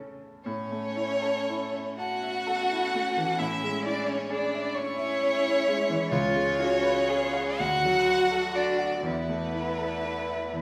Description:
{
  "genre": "classical, slow romantic movement for piano quartet",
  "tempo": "38-45 BPM (dotted quarters)",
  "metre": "6/8",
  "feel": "rubato",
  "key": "A major",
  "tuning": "A4 = 440 Hz",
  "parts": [
    { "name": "rich cello", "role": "second line", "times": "0.0-10.6 s", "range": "C#3 to G#4", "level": "-35 LUFS", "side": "equal", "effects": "none" },
    { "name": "clear concert grand piano", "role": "accompaniment", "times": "0.0-10.6 s", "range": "C#2 to C#6", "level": "-34 LUFS", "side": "equal", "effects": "none" },
    { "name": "rich violin", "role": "melody", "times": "0.4-10.6 s", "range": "B4 to F#5", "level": "-31 LUFS", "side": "equal", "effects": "none" },
    { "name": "rich violin", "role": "second line", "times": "0.4-10.6 s", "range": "B3 to F#4", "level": "-35 LUFS", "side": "equal", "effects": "none" }
  ],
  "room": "wet recital hall reverb, RT60 1.3 s",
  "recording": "small room ambience",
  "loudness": "-27 LUFS",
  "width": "mono",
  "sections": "0.5-10.6 A section",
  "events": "none",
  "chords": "0.5 A; 3.4 C#m/A; 6.1 C#7; 7.6 D; 9.0 Esus4",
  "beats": "| 0.46 1.99 | 3.41 4.77 | 6.12 7.60 | 9.05 10.52"
}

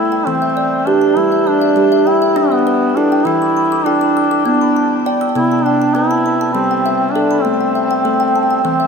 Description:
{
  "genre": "world meditative, meditative tuned percussion",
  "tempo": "200 BPM (eighths)",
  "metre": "7/8",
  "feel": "straight",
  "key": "unclear",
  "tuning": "A4 = 439 Hz",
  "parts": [
    { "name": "warm duduk", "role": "melody", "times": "0.0-8.9 s", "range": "B3 to E4", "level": "-16 LUFS", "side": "right 1 dB", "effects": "shimmer reverb" },
    { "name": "kalimba", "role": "arpeggios", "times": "0.0-8.9 s", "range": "C3 to E6", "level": "-14 LUFS", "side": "equal", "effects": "shimmer reverb, ping-pong delay" }
  ],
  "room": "wet echo chamber reverb, RT60 2.1 s",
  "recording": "none",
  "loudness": "-12 LUFS",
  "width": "side -5 dB against mid",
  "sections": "0.0-8.9 A section",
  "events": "none",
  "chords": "0.0 Am; 1.2 G; 3.3 Em; 5.4 C; 7.4 Am",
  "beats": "0.27 0.57 0.87 | 1.17 1.47 1.76 2.06 2.36 2.66 2.96 | 3.26 3.56 3.86 4.16 4.46 4.75 5.05 | 5.35 5.65 5.95 6.25 6.55 6.85 7.15 | 7.45 7.75 8.05 8.35 8.64"
}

